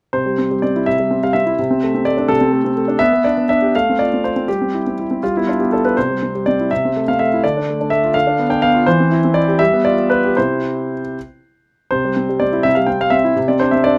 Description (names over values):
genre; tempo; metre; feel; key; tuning
classical-period piano sonatina; 82 BPM (dotted quarters); 6/8; rubato; C major; A4 = 440 Hz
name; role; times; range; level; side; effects
clear concert grand piano; solo; 0.1-14.0 s; C3 to G5; -16 LUFS; equal; none
room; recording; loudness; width
light reverb; close, detailed microphones; -16 LUFS; mono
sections
0.1-11.9 A section; 11.9-14.0 A section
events
none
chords
0.1 C; 1.6 D5/C; 3.0 G/B; 3.7 F/A; 4.5 C/G; 5.2 G; 6.0 C; 6.7 Am/C; 7.4 Dm; 8.1 Bdim/D; 8.9 C/E; 9.6 G7; 10.4 C; 13.4 D5/C